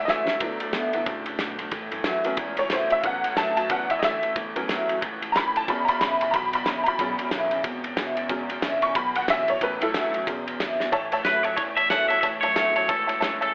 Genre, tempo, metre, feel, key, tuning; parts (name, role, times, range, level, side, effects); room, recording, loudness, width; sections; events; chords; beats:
rockabilly; 183 BPM; 4/4; swing 60% on 8ths; A major; A4 = 440 Hz
honky-tonk upright piano; accompaniment; 0.0-13.5 s; F#3 to C#6; -28 LUFS; equal; plate reverb
picked steel-string acoustic guitar; accompaniment; 0.0-13.5 s; E2 to F#4; -32 LUFS; equal
electric guitar through a small old amp; riff; 0.0-13.5 s; E2 to B3; -35 LUFS; equal; vibrato effect
upright bass; bass; 0.0-13.5 s; E1 to A2; -45 LUFS; equal
cloth-damped thuddy drum kit; drums; 0.1-13.5 s; kick drum, ride cymbal, snare drum; -32 LUFS; equal
twangy electric guitar; melody; 11.2-13.5 s; A4 to F#5; -24 LUFS; equal; spring reverb, analog delay
moderate studio reverb, RT60 0.5 s; telephone sound; -25 LUFS; mono
0.0-10.9 A section; 10.9-13.5 B section
honky-tonk piano solo 0.0-10.9; drum fill 0.1-0.4, 10.8
0.4 D6; 1.7 A6; 5.7 E6; 9.6 A6; 10.3 E6; 10.9 A6
0.08 | 0.41 0.74 1.07 1.40 | 1.73 2.06 2.39 2.71 | 3.04 3.37 3.70 4.03 | 4.36 4.69 5.02 5.35 | 5.67 6.00 6.33 6.66 | 6.99 7.32 7.64 7.97 | 8.30 8.63 8.96 9.28 | 9.61 9.94 10.27 10.59 | 10.92 11.25 11.58 11.91 | 12.23 12.56 12.89 13.22